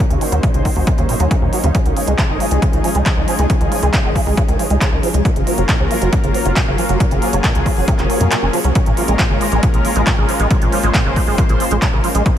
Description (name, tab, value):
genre	uplifting trance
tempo	137 BPM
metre	4/4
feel	straight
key	unclear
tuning	A4 = 440 Hz
part	lush unison pad	sustained chords	0.0-12.4 s	F3 to C5	-21 LUFS	left 1 dB	chorus, sidechain pumping
part	liquid acid bass	arpeggios	0.0-12.3 s	Bb2 to Db4	-21 LUFS	right 3 dB	ensemble chorus, vintage 12-bit sampler grit, sidechain pumping, ping-pong delay
part	electronic kick drum	drums	0.0-12.3 s	none	-16 LUFS	equal	overdrive
part	tight sequencer bass	bass	0.1-12.2 s	Gb1 to Gb2	-18 LUFS	equal	sidechain pumping
part	big-room dance drum kit	drums	0.1-12.3 s	handclaps, hi-hat	-23 LUFS	right 1 dB	overdrive
part	swell	sound effects	8.0-8.8 s	none	-27 LUFS	left 4 dB	none
room	little or no reverb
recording	none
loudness	-13 LUFS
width	side -10 dB against mid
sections	0.0-12.4 A section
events	filter sweep on acid bass 0.0-12.4; filter sweep on analog synth pad 0.0-12.4; swell 8.0-8.8; kick drops out 8.3-8.8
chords	0.0 Ebm7; 1.7 Dbadd9; 5.3 Gbmaj7; 8.8 Bbm7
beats	| 0.00 0.43 0.87 1.31 | 1.75 2.19 2.62 3.06 | 3.50 3.94 4.38 4.81 | 5.25 5.69 6.13 6.57 | 7.00 7.44 7.88 8.32 | 8.76 9.19 9.63 10.07 | 10.51 10.94 11.38 11.82 | 12.26